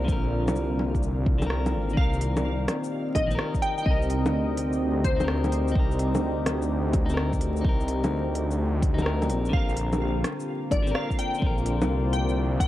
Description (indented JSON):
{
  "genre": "future garage",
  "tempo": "127 BPM",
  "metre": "4/4",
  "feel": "swing 67% on 16ths",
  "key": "C minor",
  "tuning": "A4 = 438 Hz",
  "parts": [
    { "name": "clean electric guitar", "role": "accompaniment", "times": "0.0-12.7 s", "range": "D3 to Bb4", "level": "-31 LUFS", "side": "left 3 dB", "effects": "sidechain pumping, analog delay" },
    { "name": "dark analog pad", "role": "sustained chords", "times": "0.0-12.7 s", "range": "Bb3 to Eb5", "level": "-32 LUFS", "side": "right 1 dB", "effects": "chorus, sidechain pumping" },
    { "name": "swelling detuned saw bass", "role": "bass", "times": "0.0-12.7 s", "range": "Ab1 to D2", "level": "-27 LUFS", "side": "equal", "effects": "tube saturation, sidechain pumping" },
    { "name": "backwards swelling texture", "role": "texture", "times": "0.0-2.0 s", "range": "F4 to F5", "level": "-45 LUFS", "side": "equal", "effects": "none" },
    { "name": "electronic kick drum", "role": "drums", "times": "0.1-12.7 s", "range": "none", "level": "-25 LUFS", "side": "equal", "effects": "vintage 12-bit sampler grit" },
    { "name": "organic electronic drum kit", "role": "drums", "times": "0.1-12.7 s", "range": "bongos, hi-hat, rim click, shaker", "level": "-30 LUFS", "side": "equal", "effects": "overdrive, vintage 12-bit sampler grit" },
    { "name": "glassy wavetable pluck", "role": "melody", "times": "2.0-5.7, 9.5-12.7 s", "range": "C5 to G5", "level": "-32 LUFS", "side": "left 1 dB", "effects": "chorus, tape echo" }
  ],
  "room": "light reverb",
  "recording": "vinyl crackle",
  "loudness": "-23 LUFS",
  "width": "side -14 dB against mid",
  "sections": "0.0-2.0 A section; 2.0-12.7 B section",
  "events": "none",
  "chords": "0.0 Bbadd9; 2.0 Cm7; 9.5 Bbadd9"
}